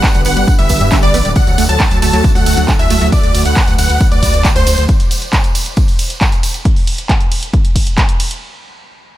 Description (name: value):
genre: uplifting trance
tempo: 136 BPM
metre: 4/4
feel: straight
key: unclear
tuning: A4 = 441 Hz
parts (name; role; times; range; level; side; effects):
- big supersaw lead; melody; 0.0-4.8 s; C5 to A5; -18 LUFS; equal; sidechain pumping, dub echo
- plucky unison lead; second line; 0.0-3.1 s; D5 to A5; -24 LUFS; left 1 dB; lush chorus, sidechain pumping, dub echo
- analog string pad; sustained chords; 0.0-4.9 s; D3 to B4; -21 LUFS; right 1 dB; ensemble chorus, sidechain pumping
- tight sequenced synth; arpeggios; 0.0-3.1 s; D3 to D4; -22 LUFS; right 4 dB; chorus, phaser, cassette tape, sidechain pumping, dub echo
- electronic kick drum; drums; 0.0-8.1 s; none; -12 LUFS; equal; none
- punchy analog drum machine; drums; 0.0-8.4 s; handclaps, hi-hat, ride cymbal; -20 LUFS; right 1 dB; sidechain pumping on hats, sidechain pumping on cymbals
- tambourine; percussion; 0.0-6.6 s; none; -25 LUFS; right 2 dB; none
- gritty driven synth bass; bass; 0.1-4.9 s; D1 to G2; -15 LUFS; equal; distortion, sidechain pumping
room: little or no reverb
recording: none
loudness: -10 LUFS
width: side -14 dB against mid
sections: 0.0-8.4 A section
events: drop 0.0-8.4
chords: 0.0 G; 1.4 D; 4.9 N.C.